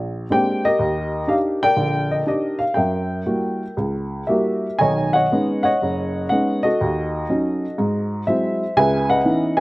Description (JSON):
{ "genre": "solo jazz", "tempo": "122 BPM", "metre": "4/4", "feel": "swing 67% on 8ths, rubato", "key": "B major from 4.8 s", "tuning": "A4 = 438 Hz", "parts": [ { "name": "dark upright piano", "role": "solo", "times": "0.0-9.6 s", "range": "F#1 to G#5", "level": "-18 LUFS", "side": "equal", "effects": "slapback echo" } ], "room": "little or no reverb", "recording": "recorded outdoors, with no room sound", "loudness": "-18 LUFS", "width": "side -19 dB against mid", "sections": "0.0-4.8 A section; 4.8-9.6 B section", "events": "none", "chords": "0.0 Bb13; 0.8 Ebmaj7; 2.8 Gb7b9; 4.8 B69; 6.8 D#m7b5; 7.8 G#7b13; 8.8 C#m9" }